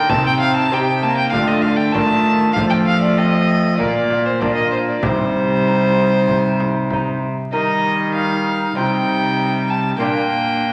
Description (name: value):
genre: classical, renaissance-style consort dance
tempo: 97 BPM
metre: 4/4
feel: straight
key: C dorian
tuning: A4 = 441 Hz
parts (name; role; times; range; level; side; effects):
- rich violin; melody; 0.0-10.7 s; C5 to A5; -22 LUFS; equal; none
- mellow tenor recorder; second line; 0.0-10.7 s; D4 to F4; -28 LUFS; equal; none
- lute; accompaniment; 0.0-10.7 s; Bb2 to D5; -27 LUFS; equal; none
- warm viola; accompaniment; 0.0-10.7 s; G3 to C4; -23 LUFS; equal; none
- warm cello; bass; 0.0-10.7 s; Bb2 to F3; -25 LUFS; equal; none
- frame drum; percussion; 0.1-7.2 s; none; -30 LUFS; equal; none
room: wet recital hall reverb, RT60 1.3 s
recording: vinyl crackle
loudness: -17 LUFS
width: mono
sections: 0.0-7.5 A section; 7.5-10.7 B section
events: none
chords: 0.1 Cm; 1.3 Dm; 2.6 F; 3.8 Bb; 5.0 Cm; 7.5 Eb; 8.8 Cm; 10.0 Bb